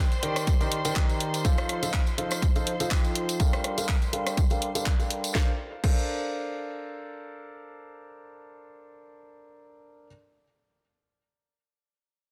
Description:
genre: piano house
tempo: 123 BPM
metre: 4/4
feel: swing 55% on 16ths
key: Bb major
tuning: A4 = 439 Hz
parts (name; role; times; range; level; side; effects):
- rich studio violin section; sustained chords; 0.0-5.4 s; C5 to C6; -40 LUFS; equal; sidechain pumping, low-pass filter
- clear grand piano; riff; 0.0-10.1 s; Eb3 to G5; -34 LUFS; equal; sidechain pumping, low-pass filter, delay
- house drum kit; drums; 0.1-6.0 s; crash cymbal, handclaps, hi-hat, rim click, snare drum; -35 LUFS; equal; soft clipping on snare
- tambourine; percussion; 0.1-5.3 s; none; -40 LUFS; equal; none
- electronic kick drum; drums; 0.5-6.0 s; none; -27 LUFS; equal; none
room: light reverb, small room reverb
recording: dense, heavily limited modern master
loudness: -27 LUFS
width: mono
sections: 0.0-5.3 A section; 5.3-9.3 B section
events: filter sweep on grand piano 0.0-5.3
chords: 0.0 Ebmaj7; 1.4 F7; 3.4 Gm9; 5.3 Bbmaj9

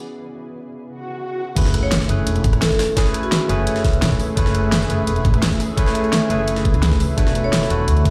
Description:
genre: liquid drum and bass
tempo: 171 BPM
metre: 4/4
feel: straight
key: F# minor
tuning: A4 = 440 Hz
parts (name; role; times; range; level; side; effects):
- barky tine electric piano; accompaniment; 0.0-8.1 s; A3 to B4; -26 LUFS; equal; subtle chorus, dub echo
- shimmering ambient pad; sustained chords; 0.0-8.1 s; A3 to F#5; -30 LUFS; equal; chorus, built-in reverb
- swell and sub drop; sound effects; 1.0-3.0 s; none; -31 LUFS; equal; none
- upright bass; bass; 1.6-8.1 s; E1 to D2; -22 LUFS; equal; none
- electronic kick drum; drums; 1.6-8.1 s; none; -22 LUFS; equal; overdrive
- jungle sampler-style drum kit; drums; 1.6-8.1 s; hi-hat, snare drum; -30 LUFS; equal; high-pass filter on hats, high-pass filter on snare, high-pass filter on room
- pop drum kit; drums; 1.6-8.1 s; crash cymbal, hi-hat, rim click, snare drum; -26 LUFS; equal; overdrive
- vibraphone with medium hard mallets; melody; 1.8-3.6, 7.4-7.7 s; F#4 to C#5; -28 LUFS; equal; dub echo
room: light reverb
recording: played on a big sound system in a bare room, large studio reverb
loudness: -18 LUFS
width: mono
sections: 0.0-1.6 A section; 1.6-8.1 B section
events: swell 1.0-1.6; drop 1.6-8.1; impact 1.6-3.0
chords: 0.0 C#m7; 1.6 F#m11; 7.2 E9sus4

